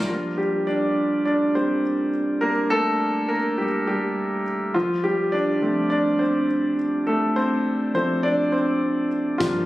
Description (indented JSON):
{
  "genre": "piano-driven pop",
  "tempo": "103 BPM",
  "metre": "4/4",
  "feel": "straight",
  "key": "G minor",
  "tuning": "A4 = 441 Hz",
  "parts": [
    { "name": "clear grand piano", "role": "accompaniment", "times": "0.0-9.7 s", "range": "G2 to G5", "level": "-20 LUFS", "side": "equal", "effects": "none" },
    { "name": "fingered electric bass", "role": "bass", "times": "0.0, 9.4-9.7 s", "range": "G1", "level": "-34 LUFS", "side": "equal", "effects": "none" },
    { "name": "natural country drum kit", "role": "drums", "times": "9.4-9.5 s", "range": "hi-hat, kick drum", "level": "-28 LUFS", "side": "equal", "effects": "none" }
  ],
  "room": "light reverb, small room ambience",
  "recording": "recorded on a phone in the room, studio reverb, compression",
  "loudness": "-20 LUFS",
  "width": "side -16 dB against mid",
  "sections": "0.1-9.7 A section",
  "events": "grand piano solo 0.1-9.7",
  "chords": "0.1 Gm; 4.8 F",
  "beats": "| 0.09 0.67 1.25 1.84 | 2.42 3.00 3.58 4.17 | 4.75 5.33 5.92 6.50 | 7.08 7.66 8.24 8.83 | 9.41"
}